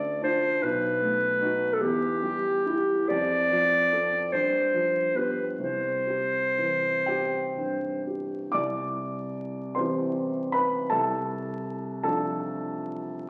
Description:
classical, romantic duo for clarinet and grand piano; 39-53 BPM (dotted quarters); 6/8; rubato; C major; A4 = 440 Hz
warm clarinet; melody; 0.0-8.0 s; G4 to D5; -27 LUFS; equal
dark concert grand piano; accompaniment; 0.0-13.3 s; B1 to D6; -31 LUFS; equal
wet recital hall reverb, RT60 1.5 s; very old 78 rpm record, vinyl crackle; -27 LUFS; mono
0.0-8.5 A section; 8.5-13.3 A section
0.0 Dm; 0.6 B7; 1.8 Em; 3.1 F; 4.3 G7; 5.6 C; 10.9 Dm7/C

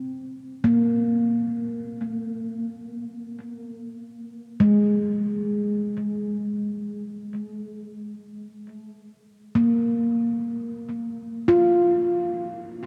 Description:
ambient; free time; A4 = 440 Hz
handpan; solo; 0.0-12.9 s; Ab3 to F4; -25 LUFS; equal; tape echo
wet cathedral reverb, RT60 6.8 s; in a vast, echoing space, cassette tape; -24 LUFS; mono
0.0-3.7 A section; 3.7-12.9 A section
0.0 Bbsus2; 3.7 Bb5

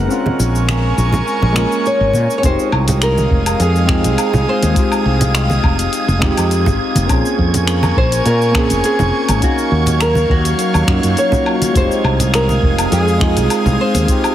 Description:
sunset chillout; 103 BPM; 4/4; swing 53% on 16ths; F phrygian; A4 = 441 Hz
soft electric-piano-like synth keys; accompaniment; 0.0-14.3 s; Ab3 to F5; -19 LUFS; moving between left 3 dB and right 3 dB; chorus, auto-pan, ping-pong delay, shimmer reverb
airy breathy pad; sustained chords; 0.0-14.3 s; Gb3 to Eb6; -21 LUFS; equal; chorus, shimmer reverb
woody fretless electric bass; bass; 0.0-14.1 s; F1 to Bb2; -16 LUFS; equal
deep house drum kit; drums; 0.1-14.3 s; cabasa, finger snaps, hi-hat, woodblock; -22 LUFS; left 1 dB; overdrive
congas; percussion; 0.3-14.1 s; -21 LUFS; right 2 dB
nylon-string guitar; melody; 1.9-14.3 s; Gb4 to Db5; -20 LUFS; equal; vintage 12-bit sampler grit, ping-pong delay, shimmer reverb
electronic kick drum; drums; 2.4-14.2 s; -18 LUFS; equal
wind-like tuned noise texture; texture; 2.9-14.3 s; Ab6; -27 LUFS; right 5 dB; built-in reverb, shimmer reverb
moderate lush hall reverb, RT60 2.2 s; heavily compressed radio sound; -12 LUFS; side -12 dB against mid
0.0-2.4 A section; 2.4-14.3 B section
break 0.1-2.4
0.1 Bbm9; 2.4 Fm9; 7.1 Bbm9; 9.4 Ebm9; 11.8 Fm9

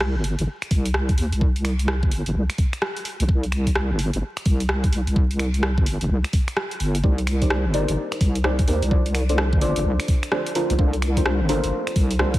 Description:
UK garage, two-step garage; 128 BPM; 4/4; swing 63% on 16ths; A4 = 440 Hz
deep soft wobble bass; bass; 0.0-12.4 s; G1 to Eb2; -22 LUFS; equal; chorus
punchy analog drum machine; drums; 0.0-12.4 s; finger snaps, hi-hat, rim click; -27 LUFS; equal
electronic kick drum; drums; 0.7-12.4 s; -20 LUFS; equal
deep mellow chord stab; stabs; 7.0-12.3 s; D4 to D5; -25 LUFS; equal; chorus, phaser, tape echo
light reverb; heavily compressed radio sound, multiband compression, vinyl crackle; -19 LUFS; side -16 dB against mid
0.0-12.4 A section
0.0 C5; 1.4 Gsus4; 7.0 Cm9; 8.9 Dm7; 10.6 Bbmaj9

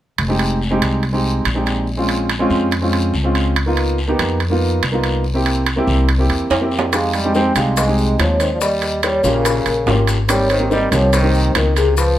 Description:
Afro-Cuban jazz; 142 BPM; 4/4; straight; F minor; A4 = 441 Hz
upright bass; bass; 0.2-12.2 s; F1 to F2; -19 LUFS; equal
guiro; percussion; 0.2-12.2 s; -30 LUFS; left 4 dB
timbales; percussion; 0.2-12.0 s; -22 LUFS; right 5 dB
warm concert grand piano; accompaniment; 0.3-11.8 s; Ab3 to G4; -19 LUFS; right 1 dB
vibraphone with soft mallets; melody; 6.9-12.2 s; Ab4 to G5; -20 LUFS; left 1 dB
brilliant trombone; second line; 6.9-12.2 s; C3 to C4; -22 LUFS; right 1 dB
bongos; percussion; 6.9-12.2 s; -26 LUFS; left 5 dB
maracas; percussion; 6.9-12.2 s; -30 LUFS; left 6 dB
light reverb; -14 LUFS; side -12 dB against mid
0.2-6.9 A section; 6.9-12.2 B section
drum fill 6.5-6.9
0.2 Fm9; 1.9 Bbm9; 3.6 Db13; 5.2 C7; 6.9 Fm7; 8.6 Eb7; 10.3 Abmaj7

